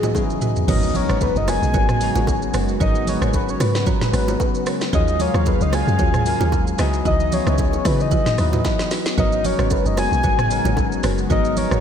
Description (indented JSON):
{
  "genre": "amapiano",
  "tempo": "113 BPM",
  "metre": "4/4",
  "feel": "swing 55% on 16ths",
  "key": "G# minor",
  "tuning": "A4 = 441 Hz",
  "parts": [
    { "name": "soft octave-layered synth lead", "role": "melody", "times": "0.0-11.8 s", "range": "G#4 to G#5", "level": "-24 LUFS", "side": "left 2 dB", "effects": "chorus, analog delay" },
    { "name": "bell-like tine electric piano", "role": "accompaniment", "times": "0.0-11.8 s", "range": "C#3 to B4", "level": "-26 LUFS", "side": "left 7 dB", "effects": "wide subtle chorus" },
    { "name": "warm analog pad", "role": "sustained chords", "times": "0.0-11.8 s", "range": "C#2 to E#5", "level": "-27 LUFS", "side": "equal", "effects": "chorus, sidechain pumping" },
    { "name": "buzzing marimba with medium mallets", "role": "stabs", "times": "0.0-11.8 s", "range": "E4 to A#5", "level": "-29 LUFS", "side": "right 8 dB", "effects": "analog delay" },
    { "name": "afro-pop drum kit", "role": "drums", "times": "0.0-11.8 s", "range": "crash cymbal, hi-hat, kick drum, rim click, shaker, snare drum, toms", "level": "-22 LUFS", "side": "right 1 dB", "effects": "vintage 12-bit sampler grit" },
    { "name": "bongos and congas", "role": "percussion", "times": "0.0-11.7 s", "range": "none", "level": "-30 LUFS", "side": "right 5 dB", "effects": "none" },
    { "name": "deep log drum bass", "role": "bass", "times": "0.7-11.8 s", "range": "F#1 to C#3", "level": "-22 LUFS", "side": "equal", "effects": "none" },
    { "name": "impact", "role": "sound effects", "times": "0.7-2.8 s", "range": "none", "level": "-30 LUFS", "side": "right 1 dB", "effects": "none" }
  ],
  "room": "moderate lush hall reverb, RT60 1.6 s, digital ambience",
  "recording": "dreamy mix soaked in reverb",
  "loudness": "-17 LUFS",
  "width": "side -8 dB against mid",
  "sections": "0.7-11.8 A section",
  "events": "drum fill 0.2-0.7, 8.6-9.2; drop 0.7-11.8; impact 0.7-2.8",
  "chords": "0.0 C#m11; 0.7 G#m11; 4.9 D#m11; 6.8 C#m11; 9.2 G#m11"
}